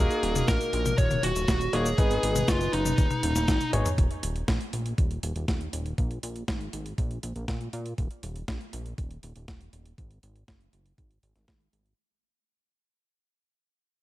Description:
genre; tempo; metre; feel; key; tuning
italo disco; 120 BPM; 4/4; straight; Eb minor; A4 = 440 Hz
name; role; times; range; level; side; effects
fuzz lead guitar; melody; 0.0-3.7 s; Eb4 to Db5; -29 LUFS; equal; distortion, tape echo
warm baby grand piano; stabs; 0.0-3.9 s; Bb3 to Db5; -31 LUFS; left 2 dB; vintage 12-bit sampler grit
chorused synth bass; bass; 0.0-11.9 s; Eb1 to Bb2; -31 LUFS; equal; tube saturation
clean 12-bit digital drum machine; drums; 0.1-12.0 s; cabasa, hi-hat, snare drum, toms; -32 LUFS; left 1 dB; none
electronic kick drum; drums; 0.5-11.6 s; none; -26 LUFS; equal; none
room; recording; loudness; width
digital ambience; none; -25 LUFS; side -16 dB against mid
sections
0.0-4.0 A section; 4.0-12.0 B section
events
drum fill 3.6-4.0; fade-out 4.0-12.0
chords
0.0 Ebm; 2.0 Abm; 4.0 Eb5; 6.0 Absus2; 8.0 Eb5; 10.0 Gbsus2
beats
0.48 0.98 1.48 | 1.98 2.48 2.98 3.48 | 3.98 4.48 4.98 5.48 | 5.98 6.48 6.98 7.48 | 7.98 8.48 8.98 9.48 | 9.98 10.48 10.98 11.48

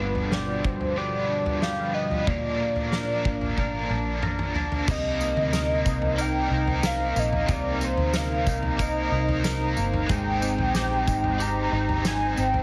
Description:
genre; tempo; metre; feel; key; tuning
dream pop; 92 BPM; 4/4; straight; C minor; A4 = 437 Hz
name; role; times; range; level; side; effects
warm velvety synth lead; melody; 0.0-12.6 s; B4 to Bb5; -31 LUFS; equal; chorus, tape echo
overdriven electric guitar; accompaniment; 0.0-12.6 s; G2 to B4; -34 LUFS; equal; tremolo, analog chorus
warbly tape-like pad; sustained chords; 0.0-12.6 s; B2 to Bb5; -36 LUFS; equal; chorus, built-in reverb
clean electric guitar; arpeggios; 0.0-12.6 s; G2 to Bb4; -33 LUFS; equal; lush chorus, tape echo
vintage muted fingered electric bass; bass; 0.0-12.6 s; F1 to D2; -31 LUFS; equal; none
loose indie drum kit; drums; 0.2-12.6 s; crash cymbal, kick drum, snare drum, tambourine, toms; -32 LUFS; equal; none
room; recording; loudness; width
light reverb, small room ambience; heavily compressed radio sound; -25 LUFS; mono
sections
0.0-4.9 A section; 4.9-12.6 B section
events
drum fill 3.6-4.9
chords
0.0 G7; 2.3 Bb; 4.9 Cm7; 10.1 Abmaj7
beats
0.31 0.97 1.62 | 2.27 2.92 3.58 4.23 | 4.88 5.53 6.18 6.84 | 7.49 8.14 8.79 9.45 | 10.10 10.75 11.40 12.05

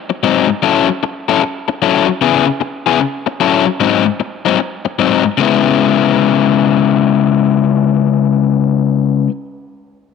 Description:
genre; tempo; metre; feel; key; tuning
blues; 151 BPM; 4/4; swing 65% on 8ths; C# minor; A4 = 440 Hz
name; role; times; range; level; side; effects
overdriven electric guitar; solo; 0.1-9.3 s; G#2 to A4; -12 LUFS; left 8 dB; none
room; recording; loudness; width
moderate spring reverb, RT60 2.6 s; none; -11 LUFS; side -5 dB against mid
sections
0.0-5.4 A section; 5.4-8.6 B section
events
none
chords
0.0 G#7; 0.6 F#m7; 2.2 C#m7; 3.0 F#m7; 3.8 G#7; 5.4 C#m7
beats
0.23 | 0.63 1.02 1.42 1.82 | 2.22 2.61 3.01 3.41 | 3.81 4.20 4.60 5.00 | 5.39 5.79 6.19 6.59 | 6.99 7.38 7.78 8.18

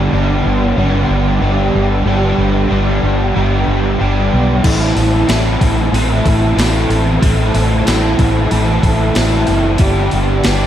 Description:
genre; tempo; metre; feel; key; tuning
rock, shoegaze and dream pop; 93 BPM; 4/4; straight; G major; A4 = 439 Hz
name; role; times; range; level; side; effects
crunchy overdriven guitar; riff; 0.0-10.7 s; G2 to A4; -14 LUFS; equal; ensemble chorus
vintage muted fingered electric bass; bass; 0.0-10.7 s; F#1 to B1; -16 LUFS; equal; none
gated 80s digital drum machine; drums; 4.6-10.6 s; crash cymbal, hi-hat, kick drum, snare drum; -18 LUFS; equal; gated reverb, gated reverb snare
room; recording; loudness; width
wet huge ambient reverb, RT60 7.9 s; dreamy mix soaked in reverb; -11 LUFS; side -10 dB against mid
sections
0.0-10.7 A section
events
none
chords
0.0 G; 4.6 Am; 9.8 G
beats
0.13 0.78 1.42 | 2.07 2.71 3.36 4.00 | 4.65 5.29 5.94 6.58 | 7.23 7.87 8.52 9.16 | 9.81 10.45

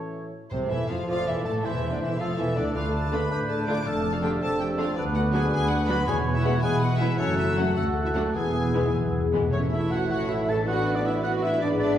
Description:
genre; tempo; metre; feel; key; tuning
classical, dramatic, fast romantic movement for symphony orchestra; 107 BPM (dotted quarters); 6/8; straight; A minor, A major from 5.0 s; A4 = 440 Hz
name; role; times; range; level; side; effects
mellow clarinet; second line; 0.0-12.0 s; C4 to E5; -35 LUFS; equal; none
warm oboe; second line; 0.0-11.9 s; G#4 to A5; -34 LUFS; right 2 dB; none
clear bassoon; accompaniment; 0.0-12.0 s; C3 to D4; -34 LUFS; right 3 dB; none
warm French horn section; sustained chords; 0.0-12.0 s; C3 to F#4; -32 LUFS; left 1 dB; none
concert harp; arpeggios; 0.0-12.0 s; F#2 to E6; -31 LUFS; left 4 dB; none
clear symphonic violin section; melody; 0.5-12.0 s; C5 to D6; -34 LUFS; left 4 dB; none
mellow hollow concert flute; second line; 0.5-12.0 s; C5 to G6; -36 LUFS; left 1 dB; none
warm symphonic violin section; second line; 0.5-12.0 s; G#3 to E5; -37 LUFS; left 2 dB; none
rich studio viola section; accompaniment; 0.5-12.0 s; C3 to F#4; -36 LUFS; right 2 dB; none
dark symphonic cello section; bass; 0.5-12.0 s; C2 to A4; -31 LUFS; right 2 dB; none
warm symphonic double bass section; bass; 0.5-12.0 s; E1 to D2; -31 LUFS; right 1 dB; none
timpani; percussion; 0.5-1.0, 6.1-10.1 s; E2 to A2; -33 LUFS; equal; none
mellow tuba; bass; 9.5-12.0 s; G#1 to A1; -33 LUFS; right 2 dB; none
room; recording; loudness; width
wet recital hall reverb, RT60 1.4 s; heard from further back in the room; -23 LUFS; side -10 dB against mid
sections
0.5-9.5 A section; 9.5-12.0 B section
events
timpani fill 8.4-9.5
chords
0.0 A; 0.5 Am; 1.6 Am/E; 2.8 Dm; 3.9 Dm/F; 5.0 Bm/D; 6.1 E; 7.2 F#m; 7.8 D; 8.4 E; 9.5 A; 10.7 Bm7/A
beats
| 0.52 1.08 | 1.64 2.20 | 2.76 3.31 | 3.86 4.42 | 4.97 5.52 | 6.08 6.64 | 7.20 7.77 | 8.35 8.94 | 9.52 10.10 | 10.67 11.24 | 11.81

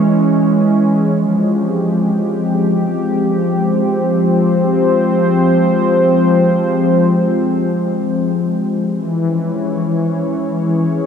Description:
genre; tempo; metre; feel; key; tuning
ambient; free time; none; none; F minor; A4 = 440 Hz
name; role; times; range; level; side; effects
warm analog pad; solo; 0.0-11.1 s; Fb3 to Db5; -13 LUFS; left 1 dB; chorus, diffuse ambient delay
room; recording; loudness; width
wet huge ambient reverb, RT60 8.3 s; cassette tape; -13 LUFS; side -7 dB against mid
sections
0.0-1.2 A section; 1.2-11.1 B section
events
none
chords
0.0 Dbm; 1.2 Fmadd9; 8.9 Dbm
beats
free time

